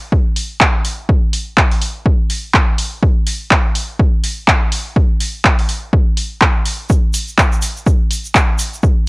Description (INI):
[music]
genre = house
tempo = 124 BPM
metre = 4/4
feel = swing 59% on 16ths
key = none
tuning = none
[part]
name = electronic kick drum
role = drums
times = 0.1-8.9 s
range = none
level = -14 LUFS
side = equal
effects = overdrive, small room ambience
[part]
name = deep house drum kit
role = drums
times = 0.4-8.7 s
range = handclaps, hi-hat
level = -16 LUFS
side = equal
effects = overdrive, small room ambience
[part]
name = tube shaker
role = percussion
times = 6.9-8.9 s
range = none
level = -27 LUFS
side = right 2 dB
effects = none
[sound]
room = digital ambience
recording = dry, gritty hardware recording, cassette tape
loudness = -13 LUFS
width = side -26 dB against mid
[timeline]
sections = 0.0-9.1 A section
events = none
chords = none